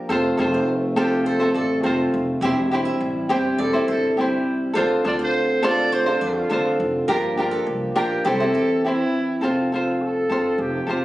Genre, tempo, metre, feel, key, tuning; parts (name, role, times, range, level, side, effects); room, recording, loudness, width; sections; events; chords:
acoustic pop; 103 BPM; 4/4; straight; F major; A4 = 441 Hz
ukulele; accompaniment; 0.0-11.0 s; C4 to C5; -21 LUFS; equal
pedal harmonium; sustained chords; 0.0-9.4 s; C3 to G4; -27 LUFS; equal
flamenco guitar; arpeggios; 0.1-8.7 s; G4 to E5; -30 LUFS; right 4 dB
upright bass; bass; 0.1-11.0 s; E1 to F2; -30 LUFS; equal
breathy trumpet; melody; 1.0-11.0 s; E4 to D5; -24 LUFS; right 1 dB
light reverb; recorded on a phone in the room, studio reverb; -19 LUFS; side -16 dB against mid
0.0-9.4 A section; 9.4-11.0 B section
0.1 F; 2.4 C/E; 4.8 Dm7; 7.1 Gm7; 8.3 C; 9.4 F